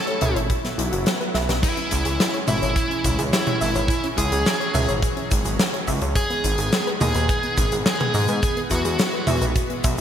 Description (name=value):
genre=synthwave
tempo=106 BPM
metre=4/4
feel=straight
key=C# minor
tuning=A4 = 440 Hz
part: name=dark smooth lead guitar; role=melody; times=0.0-9.4 s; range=E4 to A4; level=-25 LUFS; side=equal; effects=overdrive, ping-pong delay
part: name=lush unison pad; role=sustained chords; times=0.0-10.0 s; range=D#3 to E4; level=-30 LUFS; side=equal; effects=chorus, sidechain pumping
part: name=soft round pluck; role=arpeggios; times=0.1-10.0 s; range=B3 to E5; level=-31 LUFS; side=left 2 dB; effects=chorus, digital delay
part: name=big rock drum kit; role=drums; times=0.1-10.0 s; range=crash cymbal, hi-hat, shaker, snare drum, toms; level=-24 LUFS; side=equal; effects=gated reverb
part: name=chorused synth bass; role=bass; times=0.2-10.0 s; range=F#1 to G#2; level=-24 LUFS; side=equal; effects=none
part: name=kick drum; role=drums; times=0.5-10.0 s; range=none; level=-25 LUFS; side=equal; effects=none
room=moderate lush hall reverb, RT60 1.7 s, small room ambience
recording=bright 1980s-style digital production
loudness=-19 LUFS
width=side -9 dB against mid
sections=0.0-1.6 A section; 1.6-10.0 B section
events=drum fill 1.3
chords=0.5 Bsus4; 1.6 C#m; 6.2 G#m; 8.4 E